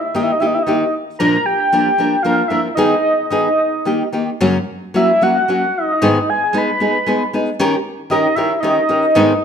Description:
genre	mexican folk, mariachi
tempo	114 BPM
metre	3/4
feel	rubato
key	unclear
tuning	A4 = 443 Hz
part	soft octave-layered synth lead	melody	0.0-9.4 s	D#5 to B5	-16 LUFS	equal	chorus, slapback echo
part	nylon-string guitar	accompaniment	0.1-9.3 s	F#2 to A#4	-17 LUFS	left 1 dB	none
room	moderate recital hall reverb, RT60 1.3 s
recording	close, detailed microphones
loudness	-14 LUFS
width	side -7 dB against mid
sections	0.0-9.4 A section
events	none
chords	0.0 D#; 1.2 A#; 2.8 G#m/D#; 3.9 D#; 4.4 F#; 6.0 G#m; 7.6 D#7

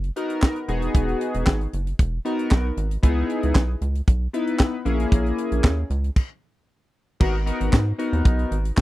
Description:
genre	early-eighties boogie funk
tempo	115 BPM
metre	4/4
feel	straight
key	G# minor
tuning	A4 = 443 Hz
part	rubbery square bass	bass	0.0-8.8 s	E1 to G#2	-24 LUFS	equal	none
part	tight funk drum kit	drums	0.0-8.8 s	crash cymbal, handclaps, hi-hat, kick drum, snare drum	-18 LUFS	equal	none
part	chorused polysynth	accompaniment	0.2-8.5 s	A#3 to B4	-25 LUFS	left 2 dB	none
room	little or no reverb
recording	dry, close 1970s-style studio recording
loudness	-20 LUFS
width	side -16 dB against mid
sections	0.0-7.2 A section; 7.2-8.8 B section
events	stop 6.2-7.2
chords	0.0 G#m7 (rootless); 0.7 Emaj7; 3.0 C#m9; 4.9 A#m7b5; 6.2 N.C.; 7.2 G#m7

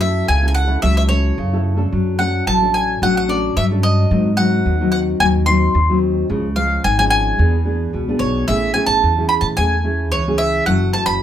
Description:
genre	samba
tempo	110 BPM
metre	4/4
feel	straight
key	F# minor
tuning	A4 = 440 Hz
part	bowl-back mandolin	melody	0.0-11.2 s	C#5 to B#5	-18 LUFS	equal	none
part	nylon-string guitar	accompaniment	0.0-11.2 s	G#2 to A4	-20 LUFS	left 2 dB	none
part	upright bass	bass	0.0-11.2 s	F#1 to A2	-18 LUFS	right 1 dB	none
room	moderate studio reverb, RT60 0.5 s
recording	heard from further back in the room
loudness	-14 LUFS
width	side -10 dB against mid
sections	0.0-8.5 A section; 8.5-11.2 B section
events	none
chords	0.0 F#m7; 1.9 Dmaj7; 4.1 G#7; 6.3 C#; 7.4 E7; 8.5 Amaj7; 10.7 F#m7

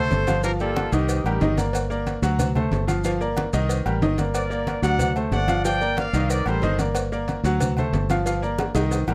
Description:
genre	latin, salsa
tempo	184 BPM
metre	4/4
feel	straight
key	G minor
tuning	A4 = 440 Hz
part	clear trumpet section	melody	0.0-1.6, 4.3-6.8 s	Eb4 to G5	-28 LUFS	equal	none
part	bright grand piano	accompaniment	0.0-9.1 s	Eb3 to F#5	-28 LUFS	equal	none
part	fingered electric bass	bass	0.0-9.1 s	G1 to D2	-27 LUFS	equal	none
part	congas	percussion	0.1-9.1 s	none	-32 LUFS	equal	none
part	cowbell and bongos	percussion	0.1-9.1 s	none	-36 LUFS	equal	none
part	maracas	percussion	0.1-9.1 s	none	-42 LUFS	equal	none
part	timbales and agogo bells	percussion	0.1-9.1 s	none	-36 LUFS	equal	none
room	little or no reverb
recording	dry, close 1970s-style studio recording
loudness	-23 LUFS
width	mono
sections	0.0-9.1 A section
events	drum fill 8.6-9.1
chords	0.4 Gm7; 1.1 Cm7; 1.7 Gm; 2.4 D7; 3.0 Gm7; 3.7 Cm7; 4.3 Gm; 5.0 D7; 5.6 Gm7; 6.3 Cm7; 7.0 Gm; 7.6 D7; 8.3 Gm7

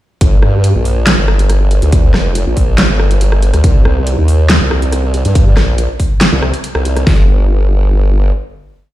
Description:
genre	heavy wobble dubstep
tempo	140 BPM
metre	4/4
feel	half-time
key	G minor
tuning	A4 = 440 Hz
part	formant-sweep wobble bass	bass	0.2-8.3 s	F1 to G2	-11 LUFS	equal	chorus, overdrive
part	big-room dance drum kit	drums	0.2-7.0 s	handclaps, hi-hat, rim click, snare drum	-16 LUFS	equal	overdrive, small room ambience
part	dubstep drum kit	drums	0.2-7.2 s	hi-hat, kick drum, snare drum	-10 LUFS	equal	small room ambience
room	little or no reverb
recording	played on a big sound system in a bare room, large studio reverb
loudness	-9 LUFS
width	side -15 dB against mid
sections	0.2-7.1 drop; 7.1-8.9 final note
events	drop 0.2-7.1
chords	none

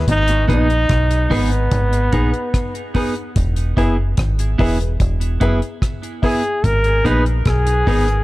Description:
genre	roots reggae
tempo	73 BPM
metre	4/4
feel	straight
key	G# minor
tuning	A4 = 438 Hz
part	warm upright piano	stabs	0.0-8.2 s	D#4 to B4	-27 LUFS	left 4 dB	none
part	deep dub fingered electric bass	bass	0.0-8.2 s	E1 to B1	-17 LUFS	equal	none
part	brilliant trombone	melody	0.1-8.2 s	B3 to B4	-20 LUFS	equal	tape echo
part	deep reggae drum kit	drums	0.1-8.2 s	hi-hat, kick drum, rim click	-21 LUFS	equal	analog delay
part	clean electric guitar	accompaniment	0.5-8.1 s	B3 to G#4	-24 LUFS	right 3 dB	tape echo
room	little or no reverb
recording	echo-heavy mix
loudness	-15 LUFS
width	side -18 dB against mid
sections	0.1-8.2 A section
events	none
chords	0.1 G#m; 3.4 E; 6.6 G#m

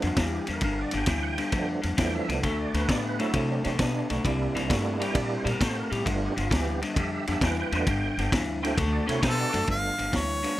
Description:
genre	electric blues shuffle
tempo	133 BPM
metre	4/4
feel	swing 68% on 8ths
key	G mixolydian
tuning	A4 = 444 Hz
part	tonewheel organ	accompaniment	0.0-10.6 s	F3 to G5	-32 LUFS	right 4 dB	slow rotary speaker, overdrive, chorus vibrato
part	electric guitar through a small old amp	riff	0.0-10.6 s	G2 to B3	-29 LUFS	left 2 dB	none
part	upright bass	bass	0.0-10.4 s	F#1 to C3	-31 LUFS	equal	none
part	vintage drum kit	drums	0.0-10.5 s	kick drum, ride cymbal, snare drum	-30 LUFS	equal	none
part	bright harmonica	melody	9.3-10.6 s	A4 to F5	-28 LUFS	equal	none
room	light reverb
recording	none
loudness	-24 LUFS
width	side -15 dB against mid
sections	0.0-9.7 A section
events	none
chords	0.0 G7; 2.4 D7; 4.3 C7; 6.1 G7; 8.8 D7; 9.7 G7

